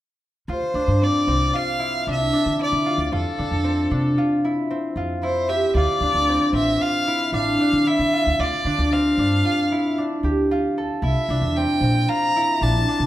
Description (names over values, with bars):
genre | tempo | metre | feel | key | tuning
contemporary instrumental, contemporary | 114 BPM | 5/4 | straight | D minor | A4 = 440 Hz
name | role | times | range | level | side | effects
clear violin | melody | 0.5-13.1 s | A4 to Bb5 | -23 LUFS | equal | none
concert harp | arpeggios | 0.5-13.1 s | C4 to A4 | -22 LUFS | equal | none
upright bass | bass | 0.5-13.1 s | A1 to D3 | -24 LUFS | equal | none
room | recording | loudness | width
moderate recital hall reverb, RT60 1.8 s | none | -18 LUFS | side -14 dB against mid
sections
0.5-13.1 A section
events
none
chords
0.5 Dm9; 5.8 Fmaj13/A; 11.0 C13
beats
| 0.48 1.01 1.54 2.06 2.59 | 3.12 3.65 4.17 4.70 5.23 | 5.76 6.29 6.81 7.34 7.87 | 8.40 8.92 9.45 9.98 10.51 | 11.03 11.56 12.09 12.61